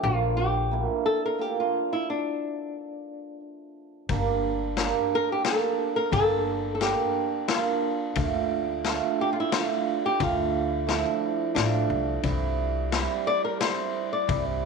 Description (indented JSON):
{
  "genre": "klezmer",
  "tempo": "88 BPM",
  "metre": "3/4",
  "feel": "straight",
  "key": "unclear",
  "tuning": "A4 = 440 Hz",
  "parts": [
    { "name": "flamenco guitar", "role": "melody", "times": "0.0-14.4 s", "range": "D4 to D5", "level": "-28 LUFS", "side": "left 2 dB", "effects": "slapback echo" },
    { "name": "cimbalom", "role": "accompaniment", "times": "0.0-14.7 s", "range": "F3 to G4", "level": "-28 LUFS", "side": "right 9 dB", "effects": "none" },
    { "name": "upright bass", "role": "bass", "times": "0.0-0.8, 4.1-14.7 s", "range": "G1 to D2", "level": "-30 LUFS", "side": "left 2 dB", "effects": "none" },
    { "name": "street-band drum kit", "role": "drums", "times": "4.1-14.4 s", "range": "kick drum, ride cymbal, snare drum", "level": "-31 LUFS", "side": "left 9 dB", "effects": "none" }
  ],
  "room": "moderate plate reverb, RT60 2.0 s, small room reverb",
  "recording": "1960s-style stereo with parts hard left and right",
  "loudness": "-24 LUFS",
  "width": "side -4 dB against mid",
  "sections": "0.0-4.1 A section; 4.1-14.7 B section",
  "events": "stop 2.1-4.1",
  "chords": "0.0 Bb; 2.1 N.C.; 4.1 Gm; 8.2 Dm; 12.2 C"
}